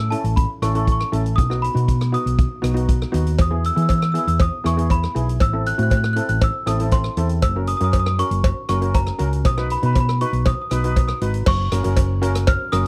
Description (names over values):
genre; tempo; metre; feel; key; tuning
calypso; 119 BPM; 4/4; straight; unclear; A4 = 440 Hz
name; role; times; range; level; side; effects
small celesta; melody; 0.0-12.9 s; A5 to F#6; -27 LUFS; equal; none
hollow-body short-scale fingered electric bass; bass; 0.0-12.8 s; F#1 to E3; -23 LUFS; equal; none
steel pan; accompaniment; 0.1-12.9 s; B3 to B4; -29 LUFS; equal; none
swinging big-band drum kit; drums; 0.1-12.8 s; crash cymbal, hi-hat, kick drum, rim click; -24 LUFS; equal; none
cowbell; percussion; 3.4-12.6 s; none; -30 LUFS; equal; none
room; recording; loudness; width
little or no reverb; dry, close 1970s-style studio recording; -20 LUFS; mono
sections
0.0-11.5 A section; 11.5-12.9 B section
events
none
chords
0.0 A; 1.4 B; 3.4 E; 5.4 Am6; 7.4 F#; 9.4 B; 11.5 F#